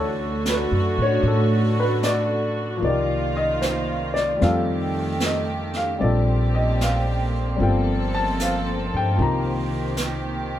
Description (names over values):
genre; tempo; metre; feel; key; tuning
jazz ballad; 76 BPM; 4/4; swing 69% on 8ths; unclear; A4 = 439 Hz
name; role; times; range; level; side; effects
warm upright piano; accompaniment; 0.0-10.6 s; E3 to Bb5; -24 LUFS; left 2 dB; none
warm studio string section; sustained chords; 0.0-10.6 s; D3 to A4; -26 LUFS; right 2 dB; none
upright bass; bass; 0.0-10.6 s; G1 to A2; -24 LUFS; equal; none
jazz brush drum kit; drums; 0.5-10.6 s; brushed snare drum, hi-hat, snare drum; -30 LUFS; right 2 dB; none
room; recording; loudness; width
moderate large studio reverb, RT60 1.2 s; band playing live in one room; -20 LUFS; side -12 dB against mid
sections
0.0-10.6 A section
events
none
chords
0.0 D; 2.8 Cm7; 4.4 F9; 6.0 Bb69; 7.6 Gm11; 9.2 Cm7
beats
0.45 1.24 2.03 | 2.82 3.61 4.41 5.20 | 6.00 6.80 7.59 8.38 | 9.18 9.96